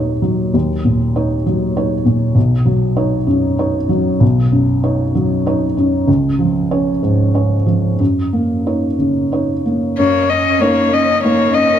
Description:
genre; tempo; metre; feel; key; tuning
neoclassical piano and strings; 90-102 BPM; 3/4; rubato; F# major; A4 = 440 Hz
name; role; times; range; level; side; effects
felt-muted upright piano; accompaniment; 0.0-11.8 s; B1 to C#5; -14 LUFS; equal; none
warm violin; melody; 10.0-11.8 s; C#5 to D#5; -14 LUFS; left 6 dB; none
rich cello; second line; 10.0-11.8 s; A#3 to C#4; -20 LUFS; right 7 dB; slapback echo
hollow soft pad; sustained chords; 10.0-11.8 s; C#4 to D#5; -24 LUFS; left 2 dB; ensemble chorus
room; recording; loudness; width
moderate recital hall reverb, RT60 1.5 s; dark, warm production; -13 LUFS; side -9 dB against mid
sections
0.0-10.0 A section; 10.0-11.8 A section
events
none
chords
0.0 D#m7; 2.4 Badd9; 6.1 C#; 8.0 F#6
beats
| 0.54 1.16 1.75 | 2.35 2.96 3.58 | 4.21 4.84 5.46 | 6.08 6.70 7.34 | 7.99 8.65 9.32 | 9.98 10.61 11.24

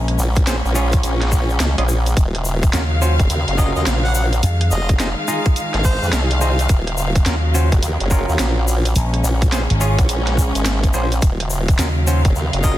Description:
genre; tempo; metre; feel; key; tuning
glitch hop; 106 BPM; 4/4; swing 63% on 16ths; Eb dorian; A4 = 439 Hz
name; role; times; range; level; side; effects
warm symphonic string section; sustained chords; 0.0-12.8 s; Db3 to F5; -25 LUFS; equal; sidechain pumping
slap bass with an envelope filter; bass; 0.0-12.2 s; Ab1 to F2; -16 LUFS; equal; tube saturation
drum and bass drum kit; drums; 0.1-12.8 s; hi-hat, rim click, snare drum; -25 LUFS; right 1 dB; studio reverb
formant-sweep wobble bass; bass; 0.2-12.8 s; Eb1 to F2; -19 LUFS; equal; chorus, tube saturation
egg shaker; percussion; 0.2-12.8 s; none; -30 LUFS; left 4 dB; none
electronic kick drum; drums; 0.4-12.8 s; none; -16 LUFS; equal; studio reverb
mellow clav; stabs; 0.5-12.8 s; Db4 to Eb5; -26 LUFS; right 1 dB; sidechain pumping, dub echo
clear harmonica; melody; 3.6-6.3, 12.6-12.8 s; C5 to Gb5; -28 LUFS; left 1 dB; dub echo
room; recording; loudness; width
light reverb, studio reverb; dense, heavily limited modern master; -15 LUFS; side -14 dB against mid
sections
0.0-12.8 A section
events
none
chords
0.0 Bbm7; 2.2 Ebm9; 4.4 Fm7; 6.7 Ebm9; 9.0 Bbm7; 11.2 Ebm9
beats
0.47 1.03 1.60 | 2.17 2.73 3.30 3.86 | 4.43 5.00 5.56 6.13 | 6.70 7.26 7.83 8.39 | 8.96 9.53 10.09 10.66 | 11.22 11.79 12.36

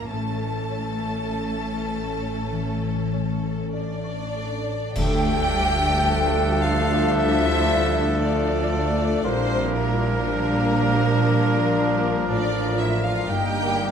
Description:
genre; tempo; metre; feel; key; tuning
classical, slow romantic movement for symphony orchestra; 45-60 BPM; 4/4; rubato; D minor; A4 = 442 Hz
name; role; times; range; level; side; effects
warm studio violin section; melody; 0.0-13.9 s; Bb3 to A5; -33 LUFS; left 2 dB; none
rich studio violin section; second line; 0.0-13.9 s; A4 to G5; -29 LUFS; left 3 dB; none
rich studio viola section; accompaniment; 0.0-13.9 s; F3 to F4; -30 LUFS; equal; none
concert harp; arpeggios; 0.0-13.9 s; G2 to E6; -30 LUFS; left 4 dB; none
rich studio double bass section; bass; 0.0-13.9 s; G1 to D2; -26 LUFS; right 3 dB; none
warm studio cello section; bass; 0.0-13.9 s; D2 to A3; -33 LUFS; right 4 dB; none
bright flute section; second line; 3.7-13.8 s; Bb4 to G5; -31 LUFS; right 2 dB; none
mellow clarinet; second line; 5.0-13.9 s; D4 to Eb4; -32 LUFS; left 3 dB; none
mellow bassoon; accompaniment; 5.0-13.9 s; A3 to Bb3; -30 LUFS; right 2 dB; none
mellow French horn section; sustained chords; 5.0-13.9 s; F3 to Eb4; -28 LUFS; left 5 dB; none
clear trumpet; stabs; 5.0-13.9 s; A4 to Bb4; -30 LUFS; right 2 dB; none
clash cymbals and concert bass drum; percussion; 5.0-7.1 s; none; -30 LUFS; equal; none
room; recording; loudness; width
moderate scoring stage reverb, RT60 1.9 s; none; -20 LUFS; side -7 dB against mid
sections
0.0-5.0 A section; 5.0-13.9 B section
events
band accent 5.0-6.1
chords
0.1 A; 5.0 Dm; 9.2 Bb; 13.3 Eb/G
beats
| 0.10 1.28 2.51 3.71 | 4.96 6.06 7.14 8.21 | 9.24 10.28 11.29 12.29 | 13.29

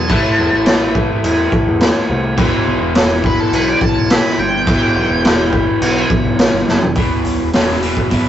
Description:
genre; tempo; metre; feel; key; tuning
blues rock power trio and southern rock; 105 BPM; 4/4; straight; E minor; A4 = 440 Hz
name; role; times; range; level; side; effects
octave-fuzz lead guitar; melody; 0.0-6.1 s; A4 to B5; -20 LUFS; equal; distortion
overdriven tonewheel organ; sustained chords; 0.0-8.3 s; B3 to B4; -30 LUFS; right 4 dB; none
crunchy overdriven guitar; riff; 0.0-8.3 s; E2 to A3; -17 LUFS; left 1 dB; none
growling picked electric bass; bass; 0.0-8.3 s; E1 to E2; -22 LUFS; equal; overdrive
raw garage drum kit; drums; 0.1-8.3 s; crash cymbal, hi-hat, kick drum, snare drum, toms; -15 LUFS; equal; none
room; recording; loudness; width
light reverb; rough rehearsal-room recording, warm saturation, nothing above 8.0 kHz; -12 LUFS; side -11 dB against mid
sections
0.0-7.0 A section; 7.0-8.3 B section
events
lead electric guitar solo 0.0-7.0; drum fill 6.7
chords
0.1 Am7; 2.4 Em7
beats
| 0.10 0.67 1.24 1.81 | 2.39 2.96 3.53 4.10 | 4.68 5.25 5.82 6.40 | 6.97 7.55 8.12

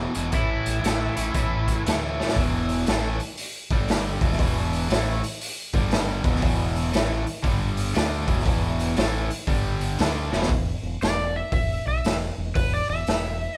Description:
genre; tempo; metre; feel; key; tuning
blues rock power trio and southern rock; 118 BPM; 4/4; swing 65% on 8ths; unclear; A4 = 440 Hz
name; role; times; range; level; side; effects
crunchy overdriven guitar; riff; 0.0-10.5 s; E2 to D4; -30 LUFS; equal; none
growling fingered electric bass; bass; 0.0-13.5 s; E1 to D2; -31 LUFS; equal; overdrive
raw garage drum kit; drums; 0.1-13.2 s; hi-hat, kick drum, snare drum; -27 LUFS; equal; none
overdriven slide guitar; melody; 0.3-1.8, 11.0-13.6 s; E4 to E5; -31 LUFS; equal; none
room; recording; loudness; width
light reverb; band playing live in one room; -24 LUFS; mono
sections
0.0-2.4 A section; 2.4-10.5 B section; 10.5-13.6 C section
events
drum fill 2.1, 10.2; electric slide guitar solo 10.5-13.6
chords
0.3 A5; 2.4 E5; 3.6 G5; 4.1 E5; 5.7 G5; 6.2 E5; 7.4 G5; 7.9 E5; 9.5 G5; 10.0 E5; 10.5 N.C.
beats
| 0.34 0.84 1.35 1.85 | 2.36 2.87 3.37 3.88 | 4.39 4.89 5.40 5.91 | 6.42 6.93 7.44 7.95 | 8.46 8.97 9.48 9.99 | 10.50 11.02 11.53 12.04 | 12.56 13.07

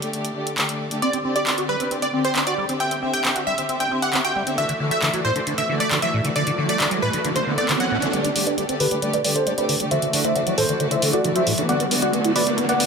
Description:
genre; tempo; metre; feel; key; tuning
uplifting trance; 135 BPM; 4/4; straight; G major; A4 = 440 Hz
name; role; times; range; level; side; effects
rich studio string section; sustained chords; 0.0-12.9 s; D3 to E5; -26 LUFS; left 1 dB; low-pass filter
big-room dance drum kit; drums; 0.0-12.9 s; handclaps, hi-hat; -25 LUFS; equal; small room reverb
supersaw stab; melody; 1.0-12.9 s; F#4 to G5; -24 LUFS; right 1 dB; low-pass filter, digital delay
liquid acid bass; arpeggios; 1.0-12.9 s; A2 to G4; -25 LUFS; equal; phaser, ensemble chorus, ping-pong delay
riser; sound effects; 5.8-12.9 s; none; -28 LUFS; right 2 dB; none
bright concert grand piano; second line; 8.1-12.9 s; B4 to F#5; -28 LUFS; right 2 dB; low-pass filter, ping-pong delay
room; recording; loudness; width
light reverb, digital ambience; none; -19 LUFS; side -5 dB against mid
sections
0.0-8.1 A section; 8.1-12.9 B section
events
riser 5.8-8.1, 8.1-12.9; build-up 8.1-12.9; filter sweep on supersaw synth 8.1-12.9; filter sweep on acid bass 8.1-12.9; filter sweep on grand piano 8.1-12.9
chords
0.0 Gsus2; 1.0 Csus2; 4.6 Dadd9; 8.1 Gsus2; 9.9 Dadd9; 11.7 Bm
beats
0.14 0.58 | 1.02 1.47 1.91 2.36 | 2.80 3.25 3.69 4.13 | 4.58 5.02 5.47 5.91 | 6.36 6.80 7.25 7.69 | 8.13 8.58 9.02 9.47 | 9.91 10.36 10.80 11.25 | 11.69 12.13 12.58

